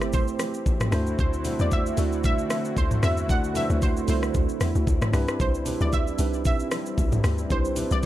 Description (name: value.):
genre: amapiano.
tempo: 114 BPM.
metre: 4/4.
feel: swing 55% on 16ths.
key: unclear.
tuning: A4 = 442 Hz.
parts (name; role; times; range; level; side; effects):
analog pluck; melody; 0.0-8.0 s; C5 to F#5; -31 LUFS; right 1 dB; chorus, ping-pong delay.
tine electric piano; accompaniment; 0.0-8.1 s; A3 to D5; -29 LUFS; moving between left 1 dB and right 9 dB; auto-pan.
warm analog pad; sustained chords; 0.0-8.1 s; D3 to G4; -34 LUFS; left 3 dB; chorus, sidechain pumping.
tight log drum bass; bass; 0.0-8.1 s; G1 to E2; -26 LUFS; equal; none.
smooth R&B drum kit; drums; 0.0-8.1 s; hi-hat, kick drum, rim click, shaker, toms; -26 LUFS; equal; none.
congas and bongos; percussion; 0.1-8.1 s; none; -37 LUFS; left 5 dB; none.
room: little or no reverb.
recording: dark, warm production.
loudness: -22 LUFS.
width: side -14 dB against mid.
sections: 0.0-8.1 A section.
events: none.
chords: 0.0 Am9; 0.9 D9; 5.1 Cmaj9.